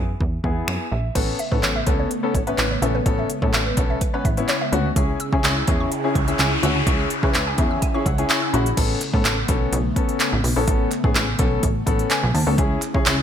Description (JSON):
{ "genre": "dance-pop", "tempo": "126 BPM", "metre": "4/4", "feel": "straight", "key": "A major", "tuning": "A4 = 440 Hz", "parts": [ { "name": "warm baby grand piano", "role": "accompaniment", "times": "0.0-13.1 s", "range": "B3 to B5", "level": "-25 LUFS", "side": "left 4 dB", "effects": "wide subtle chorus, sidechain pumping" }, { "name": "plucky analog bass", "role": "bass", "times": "0.0-13.2 s", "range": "A1 to C#3", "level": "-23 LUFS", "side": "right 1 dB", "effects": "sidechain pumping" }, { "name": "deep house drum kit", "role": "drums", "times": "0.2-13.2 s", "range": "crash cymbal, finger snaps, handclaps, hi-hat, kick drum", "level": "-22 LUFS", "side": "right 1 dB", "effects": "gated reverb" }, { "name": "airy breathy pad", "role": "sustained chords", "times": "1.4-13.2 s", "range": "C#3 to G#4", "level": "-29 LUFS", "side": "equal", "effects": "chorus, sidechain pumping" }, { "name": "hollow square pluck", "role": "arpeggios", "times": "1.2-8.5 s", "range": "B4 to E6", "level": "-30 LUFS", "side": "right 1 dB", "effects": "chorus, sidechain pumping, ping-pong delay" }, { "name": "noise sweep", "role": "sound effects", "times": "5.6-8.8 s", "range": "none", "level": "-29 LUFS", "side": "left 1 dB", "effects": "none" }, { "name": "group handclap", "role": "percussion", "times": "9.0-13.2 s", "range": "none", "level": "-33 LUFS", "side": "right 7 dB", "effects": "none" } ], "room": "light reverb", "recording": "bright 1980s-style digital production", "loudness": "-18 LUFS", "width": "side -9 dB against mid", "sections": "0.0-1.2 A section; 1.2-8.8 B section; 8.8-13.2 C section", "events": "grand piano fill 0.4-1.2, 7.3-8.8, 11.6-12.6; noise sweep 5.6-8.8", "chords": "0.0 E; 1.2 Aadd9; 5.0 C#m; 8.8 Aadd9; 12.6 C#m" }